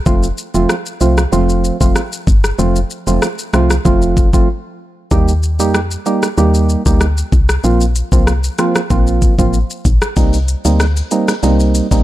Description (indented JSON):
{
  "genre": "dancehall",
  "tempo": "95 BPM",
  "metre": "4/4",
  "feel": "straight",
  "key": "unclear",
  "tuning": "A4 = 441 Hz",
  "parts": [
    { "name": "percussive organ stab", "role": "accompaniment", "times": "0.1-12.0 s", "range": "F3 to G4", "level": "-16 LUFS", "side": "right 3 dB", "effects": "chorus" },
    { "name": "woody FM bass", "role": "bass", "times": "0.1-12.0 s", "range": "F1 to F2", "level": "-15 LUFS", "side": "equal", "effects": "none" },
    { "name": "island pop drum kit", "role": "drums", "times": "0.1-12.0 s", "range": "hi-hat, kick drum, rim click, shaker", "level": "-15 LUFS", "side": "left 1 dB", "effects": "none" },
    { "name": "maracas", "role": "percussion", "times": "10.2-12.0 s", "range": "none", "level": "-31 LUFS", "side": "left 8 dB", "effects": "none" }
  ],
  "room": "little or no reverb",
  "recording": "dark, warm production",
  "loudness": "-11 LUFS",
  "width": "side -15 dB against mid",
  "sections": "0.0-5.1 A section; 5.1-12.0 B section",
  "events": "break 4.5-5.1",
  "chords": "0.1 F; 5.1 Eb; 7.6 Bbsus2; 10.2 Cm7"
}